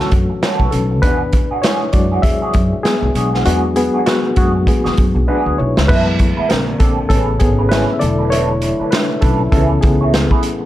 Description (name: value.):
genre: lush 1970s-style soul.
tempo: 99 BPM.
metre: 4/4.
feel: swing 58% on 16ths.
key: unclear.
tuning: A4 = 439 Hz.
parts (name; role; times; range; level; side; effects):
barky reed electric piano; accompaniment; 0.0-10.7 s; C#3 to E5; -18 LUFS; left 2 dB; overdrive, fast tremolo.
electric guitar through a small old amp; riff; 0.0-10.6 s; B3 to C#5; -23 LUFS; right 3 dB; wah.
upright bass; bass; 0.0-10.3 s; E1 to E3; -18 LUFS; equal; none.
vintage drum kit; drums; 0.0-10.6 s; crash cymbal, hi-hat, kick drum, snare drum; -16 LUFS; equal; none.
mellow French horn section; sustained chords; 5.9-10.7 s; A2 to G#4; -25 LUFS; left 1 dB; none.
room: studio reverb.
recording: none.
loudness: -12 LUFS.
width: side -14 dB against mid.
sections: 0.0-5.9 A section; 5.9-10.7 B section.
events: reed electric piano solo 0.0-5.9, 5.9-10.7; drum fill 5.3-5.9.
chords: 0.0 Dmaj7; 1.0 E9; 5.9 F#m11; 6.5 Bbmaj9; 7.1 Amaj9; 8.0 E7sus4; 9.5 C#m7.